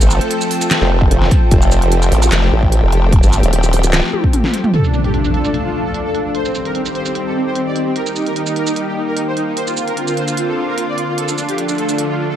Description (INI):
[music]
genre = heavy wobble dubstep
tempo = 149 BPM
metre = 4/4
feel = half-time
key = D phrygian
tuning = A4 = 440 Hz
[part]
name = lush unison pad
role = sustained chords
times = 0.0-12.4 s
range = D3 to A4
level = -22 LUFS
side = left 1 dB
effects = chorus, sidechain pumping
[part]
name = formant-sweep wobble bass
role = bass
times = 0.0-3.4 s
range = F1 to A1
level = -13 LUFS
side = equal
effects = chorus, overdrive
[part]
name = dubstep drum kit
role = drums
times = 0.0-12.1 s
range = handclaps, hi-hat, shaker, snare drum, toms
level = -20 LUFS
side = right 1 dB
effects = low-pass filter on hats, low-pass filter on perc, low-pass filter on snare, low-pass filter on toms
[part]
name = warbly tape-like pad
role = texture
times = 0.0-12.4 s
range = C4 to D6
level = -24 LUFS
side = equal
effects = chorus, built-in reverb, sidechain pumping
[part]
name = formant-sweep wobble bass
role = bass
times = 0.8-4.0 s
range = Eb1 to A1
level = -14 LUFS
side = equal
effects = chorus, overdrive
[part]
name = electronic kick drum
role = drums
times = 1.0-4.3 s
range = none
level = -13 LUFS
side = equal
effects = none
[part]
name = soft supersaw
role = melody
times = 4.7-12.3 s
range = C4 to D5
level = -21 LUFS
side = right 1 dB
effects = digital delay
[part]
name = impact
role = sound effects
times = 4.7-6.3 s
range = none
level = -20 LUFS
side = equal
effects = none
[sound]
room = light reverb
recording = dark, warm production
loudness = -13 LUFS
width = side -11 dB against mid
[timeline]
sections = 0.0-4.7 A section; 4.7-12.4 B section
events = drop 0.0-4.7; drum fill 4.1-4.7; impact 4.7-6.3; filter sweep on drum 4.7-12.4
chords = 0.0 F; 4.7 Dm; 6.3 Cm; 8.0 Eb; 9.6 Bbadd9; 11.2 Dm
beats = 0.31 0.71 1.11 | 1.51 1.92 2.32 2.72 | 3.12 3.53 3.93 4.33 | 4.74 5.14 5.54 5.94 | 6.35 6.75 7.15 7.55 | 7.96 8.36 8.76 9.17 | 9.57 9.97 10.37 10.78 | 11.18 11.58 11.98